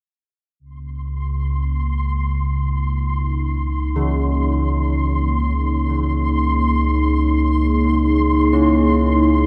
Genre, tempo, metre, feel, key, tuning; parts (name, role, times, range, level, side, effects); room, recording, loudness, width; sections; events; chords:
dark ambient drone; free time; A4 = 439 Hz
dark analog pad; sustained chords; 1.7-9.5 s; A#3 to C#5; -22 LUFS; equal; chorus
analog drone; drone; 0.6-9.5 s; C#2 to C#3; -22 LUFS; equal; lush chorus
flickering grainy texture; texture; 1.0-9.5 s; B#5; -28 LUFS; equal; built-in reverb
carillon bells; arpeggios; 4.0-9.5 s; C#3 to C#4; -28 LUFS; equal; tape echo
wet cathedral reverb, RT60 5.7 s; -19 LUFS; mono
0.6-9.5 A section
filter sweep on synth drone 0.6-9.5
0.6 C#sus2